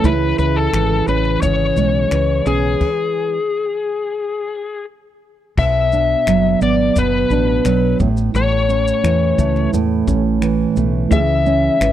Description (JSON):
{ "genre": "acoustic pop", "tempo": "87 BPM", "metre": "4/4", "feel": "straight", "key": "unclear", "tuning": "A4 = 441 Hz", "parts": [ { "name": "overdriven slide guitar", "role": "melody", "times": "0.0-11.9 s", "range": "G#4 to E5", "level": "-18 LUFS", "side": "left 5 dB", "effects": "none" }, { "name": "nylon-string guitar", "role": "accompaniment", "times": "0.0-11.9 s", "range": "A2 to E4", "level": "-18 LUFS", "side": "right 6 dB", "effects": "none" }, { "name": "woody fretless electric bass", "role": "bass", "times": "0.0-11.9 s", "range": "F#1 to E2", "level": "-19 LUFS", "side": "left 1 dB", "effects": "none" }, { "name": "compact cocktail drum kit", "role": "drums", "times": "0.0-11.9 s", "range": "crash cymbal, finger snaps, kick drum, shaker", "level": "-21 LUFS", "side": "left 1 dB", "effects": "none" }, { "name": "dark upright piano", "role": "accompaniment", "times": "11.1-11.9 s", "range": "C#4 to E5", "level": "-24 LUFS", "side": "left 8 dB", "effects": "none" } ], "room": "studio reverb", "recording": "dry, close 1970s-style studio recording", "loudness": "-14 LUFS", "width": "side -11 dB against mid", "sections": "0.0-5.6 A section; 5.6-11.9 B section", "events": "stop 2.8-5.6", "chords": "0.0 C#m; 2.8 N.C.; 5.6 Bm; 8.0 A; 11.1 C#m" }